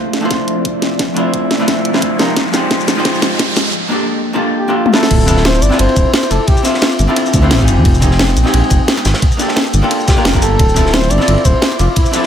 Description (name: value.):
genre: liquid drum and bass.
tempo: 175 BPM.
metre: 4/4.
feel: swing 54% on 16ths.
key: D minor.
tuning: A4 = 440 Hz.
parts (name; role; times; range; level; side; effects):
archtop guitar, miked and amplified; accompaniment; 0.0-12.3 s; F3 to E5; -16 LUFS; equal; dub echo.
ethereal airy pad; sustained chords; 0.0-12.3 s; F3 to Eb6; -24 LUFS; left 1 dB; ensemble chorus, built-in reverb, tremolo.
riser; sound effects; 1.0-3.7 s; none; -23 LUFS; right 1 dB; none.
garage drum kit; drums; 0.1-12.2 s; crash cymbal, hi-hat, shaker, snare drum, toms; -16 LUFS; equal; small room ambience.
electronic kick drum; drums; 0.3-12.0 s; none; -14 LUFS; equal; high-pass filter on kick, small room ambience.
mellow flugelhorn; melody; 4.6-7.0, 10.1-12.3 s; E4 to D5; -19 LUFS; equal; dub echo.
dark detuned saw bass; bass; 5.1-11.9 s; D1 to F2; -13 LUFS; equal; none.
crunchy breakbeat drum kit; drums; 5.1-12.3 s; ride cymbal, snare drum; -22 LUFS; equal; high-pass filter on cymbals, small room ambience, high-pass filter on snare, high-pass filter on room.
room: light reverb.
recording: none.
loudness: -10 LUFS.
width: side -9 dB against mid.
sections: 0.0-5.1 A section; 5.1-12.3 B section.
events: build-up 0.0-5.1; drum fill 0.0-3.7, 4.9; riser 1.0-3.7; drop 5.1-12.3.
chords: 0.0 Dm9; 2.2 Fm9; 3.7 Gm9; 5.1 Dm9; 7.7 Fm9; 9.2 Gm9; 10.6 Dm9.